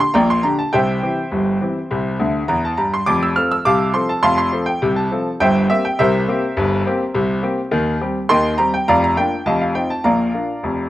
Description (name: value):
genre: ragtime piano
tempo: 103 BPM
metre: 2/4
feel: straight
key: Bb major from 7.7 s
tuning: A4 = 439 Hz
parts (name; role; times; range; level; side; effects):
- bright grand piano; solo; 0.0-10.9 s; F1 to F6; -15 LUFS; equal; none
room: light reverb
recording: recorded outdoors, with no room sound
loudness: -15 LUFS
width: side -14 dB against mid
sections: 0.0-10.9 A section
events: grand piano fill 2.2-3.1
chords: 0.0 Gm/Bb; 0.7 C; 3.1 F; 5.4 C7/G; 7.7 Cm/Eb; 8.9 Bb/F; 9.5 F5; 10.0 Bb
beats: 0.14 | 0.73 1.31 | 1.90 2.49 | 3.07 3.65 | 4.24 4.82 | 5.40 5.98 | 6.56 7.14 | 7.72 8.30 | 8.88 9.46 | 10.05 10.63